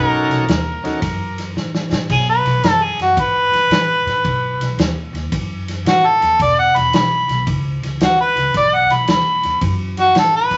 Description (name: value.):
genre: electric blues shuffle.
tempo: 112 BPM.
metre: 4/4.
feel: swing 67% on 8ths.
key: B mixolydian.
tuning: A4 = 440 Hz.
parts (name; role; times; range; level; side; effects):
warm harmonica; melody; 0.0-10.6 s; F#4 to B5; -17 LUFS; equal; overdrive.
bright tonewheel organ; accompaniment; 0.0-1.0 s; C#4 to A4; -23 LUFS; equal; slow rotary speaker, overdrive.
upright bass; bass; 0.0-10.6 s; E1 to A2; -26 LUFS; equal; none.
natural country drum kit; drums; 0.3-10.6 s; crash cymbal, kick drum, ride cymbal, snare drum; -24 LUFS; equal; none.
room: moderate club reverb, RT60 0.8 s.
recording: vinyl crackle, nothing above 7.7 kHz.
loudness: -17 LUFS.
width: mono.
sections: 0.0-2.1 A section; 2.1-10.6 B section.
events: drum fill 1.6-2.1; harmonica solo 2.1-10.6.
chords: 0.0 B7; 6.4 E5; 8.5 B7.